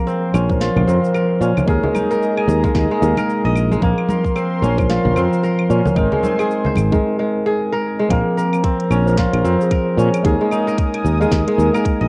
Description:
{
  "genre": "organic downtempo",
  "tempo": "112 BPM",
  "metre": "4/4",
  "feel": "swing 59% on 16ths",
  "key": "Bb minor",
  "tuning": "A4 = 444 Hz",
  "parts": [
    { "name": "tine electric piano", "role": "accompaniment", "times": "0.0-12.1 s", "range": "F3 to C5", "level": "-22 LUFS", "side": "equal", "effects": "sidechain pumping, analog delay" },
    { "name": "warm analog pad", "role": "sustained chords", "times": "0.0-12.1 s", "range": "C4 to Eb6", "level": "-30 LUFS", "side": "equal", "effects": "chorus, sidechain pumping" },
    { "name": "kora", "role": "arpeggios", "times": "0.0-12.1 s", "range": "Ab3 to Ab5", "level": "-24 LUFS", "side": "equal", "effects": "analog delay" },
    { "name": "afro-pop drum kit", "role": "drums", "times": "0.1-12.0 s", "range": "claves, hi-hat, shaker, snare drum", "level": "-32 LUFS", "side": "equal", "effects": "cassette tape" },
    { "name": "sustaining fretless electric bass", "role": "bass", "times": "0.3-12.1 s", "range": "Ab1 to Bb2", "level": "-20 LUFS", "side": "equal", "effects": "none" },
    { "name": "congas", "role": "percussion", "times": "0.3-7.0 s", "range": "none", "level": "-27 LUFS", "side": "equal", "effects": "none" },
    { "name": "electronic kick drum", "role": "drums", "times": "0.5-12.0 s", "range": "none", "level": "-22 LUFS", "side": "equal", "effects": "cassette tape" }
  ],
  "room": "moderate spring reverb, RT60 1.4 s",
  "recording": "home recording on cassette",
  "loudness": "-17 LUFS",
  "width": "mono",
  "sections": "0.0-8.1 A section; 8.1-12.1 B section",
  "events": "break 7.0-8.1",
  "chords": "0.0 Bbmadd9; 1.7 Ebsus4; 3.8 Bbmadd9; 6.0 Abadd9; 8.1 Bbmadd9; 10.2 Ebsus4"
}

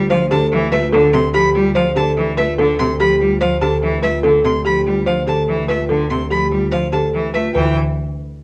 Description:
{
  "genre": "classical, minimalist pattern music",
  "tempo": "145 BPM",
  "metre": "4/4",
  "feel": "straight",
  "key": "D dorian",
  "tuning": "A4 = 440 Hz",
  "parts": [
    { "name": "clear cello", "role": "accompaniment", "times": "0.0-7.7 s", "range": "C3 to A3", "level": "-23 LUFS", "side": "equal", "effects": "none" },
    { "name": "vibraphone with soft mallets", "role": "arpeggios", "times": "0.0-7.7 s", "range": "E4 to A4", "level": "-23 LUFS", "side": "equal", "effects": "none" },
    { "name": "clear studio double bass section", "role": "bass", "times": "0.0-7.7 s", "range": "D2", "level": "-24 LUFS", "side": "equal", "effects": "none" },
    { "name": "folk marimba with medium mallets", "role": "melody", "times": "0.1-7.7 s", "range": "G4 to C5", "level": "-21 LUFS", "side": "equal", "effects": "none" },
    { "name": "rich violin", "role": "arpeggios", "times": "0.1-7.7 s", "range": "E5 to C6", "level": "-25 LUFS", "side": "equal", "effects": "none" }
  ],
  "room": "moderate large studio reverb, RT60 0.8 s",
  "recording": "worn, warbling old tape, cassette tape, warbly pitch drift",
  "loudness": "-16 LUFS",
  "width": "mono",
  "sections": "0.0-7.6 A section",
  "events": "none",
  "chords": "0.0 Dm11; 7.6 Dsus24"
}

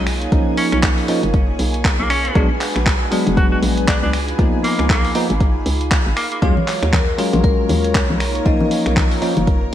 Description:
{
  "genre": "deep house",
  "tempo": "118 BPM",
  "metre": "4/4",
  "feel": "swing 59% on 16ths",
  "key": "unclear",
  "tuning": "A4 = 442 Hz",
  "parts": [
    { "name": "edgy alto saxophone", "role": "melody", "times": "0.0-6.4 s", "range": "Bb3 to Gb4", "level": "-25 LUFS", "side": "equal", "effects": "ping-pong delay" },
    { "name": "warm analog pad", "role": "sustained chords", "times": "0.0-9.7 s", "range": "Gb3 to Cb6", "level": "-26 LUFS", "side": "right 1 dB", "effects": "chorus, sidechain pumping" },
    { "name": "bell-like tine electric piano", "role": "stabs", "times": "0.0-9.3 s", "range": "E#3 to F4", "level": "-21 LUFS", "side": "equal", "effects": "lush chorus, sidechain pumping, ping-pong delay" },
    { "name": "hollow knocking FM bass", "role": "bass", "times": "0.0-9.7 s", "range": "F1 to Eb2", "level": "-21 LUFS", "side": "equal", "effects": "sidechain pumping" },
    { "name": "string machine, violins", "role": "texture", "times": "0.0-9.7 s", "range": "Ab4 to Bb5", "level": "-30 LUFS", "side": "left 1 dB", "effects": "ensemble chorus, sidechain pumping" },
    { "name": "dusty soul sampler-style drum kit", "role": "drums", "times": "0.1-9.6 s", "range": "finger snaps, handclaps, hi-hat", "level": "-24 LUFS", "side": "equal", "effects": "gated reverb" },
    { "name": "electronic kick drum", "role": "drums", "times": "0.3-9.6 s", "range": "none", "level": "-17 LUFS", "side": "equal", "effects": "overdrive" },
    { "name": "vibraphone with hard mallets", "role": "melody", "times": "6.4-8.9 s", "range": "Bb4 to D#5", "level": "-25 LUFS", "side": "left 2 dB", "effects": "ping-pong delay" },
    { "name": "congas", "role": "percussion", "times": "6.6-9.5 s", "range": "none", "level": "-24 LUFS", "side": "left 3 dB", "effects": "none" }
  ],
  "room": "light reverb",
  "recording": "bright 1980s-style digital production",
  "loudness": "-14 LUFS",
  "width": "side -11 dB against mid",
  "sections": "0.0-9.7 A section",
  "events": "none",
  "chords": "0.1 Bmaj9#11; 2.4 Bb7b9b13; 4.1 Db13; 6.4 Ebm11; 8.2 Bmaj9#11"
}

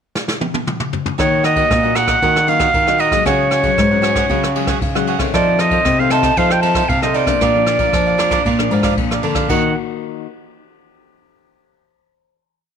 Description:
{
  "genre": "samba and choro",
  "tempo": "116 BPM",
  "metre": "4/4",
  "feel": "straight",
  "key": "Eb minor",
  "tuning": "A4 = 440 Hz",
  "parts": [
    { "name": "jazz brush drum kit", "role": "drums", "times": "0.2-9.6 s", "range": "crash cymbal, kick drum, ride cymbal, rim click, snare drum, toms", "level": "-21 LUFS", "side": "equal", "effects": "none" },
    { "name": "clear clarinet", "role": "melody", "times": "1.2-9.7 s", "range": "Db5 to A5", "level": "-16 LUFS", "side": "right 2 dB", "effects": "none" },
    { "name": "cavaquinho", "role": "accompaniment", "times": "1.2-9.7 s", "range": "D4 to Gb5", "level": "-22 LUFS", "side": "right 12 dB", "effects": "none" },
    { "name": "nylon-string guitar", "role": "accompaniment", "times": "1.2-10.3 s", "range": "F2 to Gb4", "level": "-23 LUFS", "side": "left 14 dB", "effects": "none" },
    { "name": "nylon-string guitar", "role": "bass", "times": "1.2-9.7 s", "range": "Ab2 to F3", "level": "-19 LUFS", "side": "equal", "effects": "none" }
  ],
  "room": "light reverb, small room ambience",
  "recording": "1960s-style stereo with parts hard left and right",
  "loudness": "-13 LUFS",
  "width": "side -7 dB against mid",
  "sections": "0.0-1.2 pickup bar; 1.2-9.5 A section; 9.5-11.6 final chord",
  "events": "drum fill 0.2-1.2",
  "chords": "0.0 N.C.; 1.2 Ebm; 3.3 Dbsus4; 5.3 F7; 7.4 Bb; 9.5 Ebm"
}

